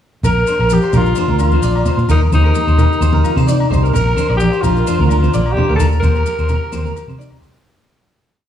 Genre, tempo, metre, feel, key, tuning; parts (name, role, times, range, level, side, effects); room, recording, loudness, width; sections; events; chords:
highlife guitar band; 129 BPM; 4/4; swing 53% on 16ths; Bb major; A4 = 441 Hz
breathy tenor saxophone; melody; 0.2-7.4 s; Eb4 to Bb4; -19 LUFS; left 3 dB
clean electric guitar; arpeggios; 0.2-7.7 s; Bb4 to D5; -22 LUFS; right 4 dB; ensemble chorus, slapback echo
fingered electric bass; bass; 0.2-7.6 s; Bb1 to C3; -15 LUFS; equal
agogo bells; percussion; 0.2-7.4 s; -28 LUFS; left 6 dB
congas; percussion; 0.2-7.5 s; -20 LUFS; right 1 dB
maracas; percussion; 0.2-7.6 s; -35 LUFS; left 7 dB
fingerpicked steel-string acoustic guitar; accompaniment; 0.3-7.6 s; F2 to G4; -23 LUFS; left 5 dB
moderate recital hall reverb, RT60 1.4 s; small room ambience; -12 LUFS; side -10 dB against mid
0.2-7.7 groove
fade-out 5.8-7.7
0.2 Bb; 2.1 Eb; 3.9 Bb; 5.8 Eb